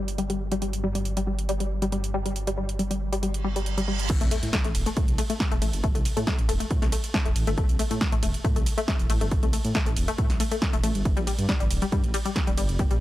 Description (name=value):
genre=driving peak-time techno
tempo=138 BPM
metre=4/4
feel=straight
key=A minor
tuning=A4 = 442 Hz
part: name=dark detuned saw bass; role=bass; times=0.0-13.0 s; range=D1 to A2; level=-29 LUFS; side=equal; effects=sidechain pumping
part: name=techno drum kit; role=drums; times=0.1-13.0 s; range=crash cymbal, hi-hat, ride cymbal, snare drum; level=-31 LUFS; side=right 1 dB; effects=sidechain pumping on hats, sidechain pumping on cymbals
part: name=tight sequenced synth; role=riff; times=0.2-12.9 s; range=G3 to A3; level=-30 LUFS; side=left 3 dB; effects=chorus, sidechain pumping, tape echo
part: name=reverse cymbal and sub drop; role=sound effects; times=3.4-5.8 s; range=none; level=-35 LUFS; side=right 3 dB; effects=none
part: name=electronic kick drum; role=drums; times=4.1-12.9 s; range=none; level=-25 LUFS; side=equal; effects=none
room=light reverb, digital ambience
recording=dry, gritty hardware recording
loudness=-23 LUFS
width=side -15 dB against mid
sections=0.0-4.1 A section; 4.1-13.0 B section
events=filter sweep on synth arpeggio sound 0.0-4.1; reverse cymbal 3.4-4.1; drop 4.1-13.0; impact 4.1-5.8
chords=0.0 N.C.; 4.1 Am; 11.1 Gm